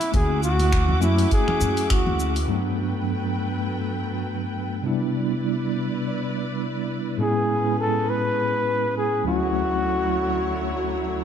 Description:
sunset chillout; 102 BPM; 4/4; swing 56% on 16ths; G lydian; A4 = 440 Hz
breathy flugelhorn; melody; 0.0-2.3, 7.2-11.2 s; E4 to B4; -24 LUFS; left 1 dB; tape echo
rich studio string section; sustained chords; 0.0-11.2 s; D3 to D6; -32 LUFS; equal
deep house drum kit; drums; 0.0-2.5 s; finger snaps, hi-hat, shaker; -32 LUFS; left 1 dB; studio ambience
tine electric piano; accompaniment; 0.1-11.2 s; D2 to F#4; -25 LUFS; moving between left 2 dB and right 4 dB; medium stereo tremolo, auto-pan, tape echo
upright bass; bass; 0.1-2.4 s; D2 to F#2; -22 LUFS; equal
electronic kick drum; drums; 0.1-2.0 s; -22 LUFS; equal; studio ambience
congas; percussion; 0.1-2.2 s; -32 LUFS; left 1 dB
moderate scoring stage reverb, RT60 2.0 s; dark, warm production; -21 LUFS; side -8 dB against mid
0.0-2.5 A section; 2.5-11.2 B section
0.0 Dmaj9; 2.5 Gmaj9; 4.8 Cmaj9; 7.2 Amaj9; 9.3 Dmaj9

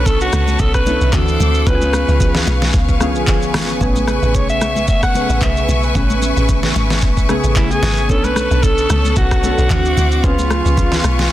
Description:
amapiano; 112 BPM; 4/4; swing 55% on 16ths; A major; A4 = 440 Hz
growling alto saxophone; melody; 0.0-11.3 s; E4 to F#5; -20 LUFS; equal; digital delay
warm analog keys; accompaniment; 0.0-11.3 s; C#3 to G#5; -22 LUFS; left 1 dB; chorus
rich studio string section; sustained chords; 0.0-11.3 s; B4 to D6; -24 LUFS; left 2 dB; sidechain pumping
marimba with medium mallets; stabs; 0.0-10.7 s; C#4 to C#5; -26 LUFS; right 2 dB; digital delay
woody log drum bass; bass; 0.0-11.3 s; G#1 to D2; -17 LUFS; equal
smooth R&B drum kit; drums; 0.1-11.3 s; handclaps, hi-hat, kick drum, rim click, shaker, snare drum; -18 LUFS; equal
congas; percussion; 0.1-11.3 s; -26 LUFS; left 2 dB
small room reverb; dense, heavily limited modern master; -13 LUFS; side -14 dB against mid
0.0-11.3 A section
synth keys fill 2.7-3.8
0.0 Bm9; 1.1 D9; 1.7 C#7; 3.8 Amaj9; 8.1 Bm9; 9.7 D9; 10.2 C#7

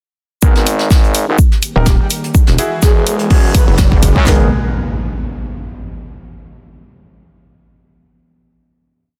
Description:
bass house; 125 BPM; 4/4; swing 55% on 16ths; G# minor; A4 = 440 Hz
sweeping resonant pad; sustained chords; 0.4-4.5 s; B2 to G#4; -27 LUFS; equal; lush chorus, sidechain pumping
warm grand piano; stabs; 0.4-4.4 s; B3 to A#4; -25 LUFS; equal; sidechain pumping, low-pass filter, digital delay
growling FM bass; bass; 0.4-4.5 s; E1 to F#2; -19 LUFS; equal; overdrive, sidechain pumping, high-pass filter
house drum kit; drums; 0.4-4.4 s; handclaps, kick drum, snare drum; -12 LUFS; equal
soft brush drum kit; drums; 0.4-4.2 s; hi-hat, shaker, snare drum; -27 LUFS; equal; sidechain pumping on hats, high-pass filter on hats, high-pass filter on snare, sidechain pumping on perc, high-pass filter on perc, high-pass filter on room
riser and impact; sound effects; 2.2-6.2 s; -26 LUFS; equal
electronic hi-hat; drums; 0.7-4.1 s; -21 LUFS; equal
pulsing pluck wobble bass; bass; 1.8-4.1 s; D#1 to F#1; -16 LUFS; equal; chorus, overdrive, sidechain pumping
breathy flute-like synth lead; melody; 1.9-3.7 s; G4 to B4; -26 LUFS; equal; analog chorus, cassette tape, digital delay
light reverb, small room ambience; dense, heavily limited modern master; -12 LUFS; mono
0.4-4.3 build; 4.3-6.2 final chord
build-up 0.4-4.3; drum fill 2.3-4.3
0.4 G#madd9; 1.4 D#; 2.3 Eadd9; 3.3 F#sus2; 4.3 G#madd9

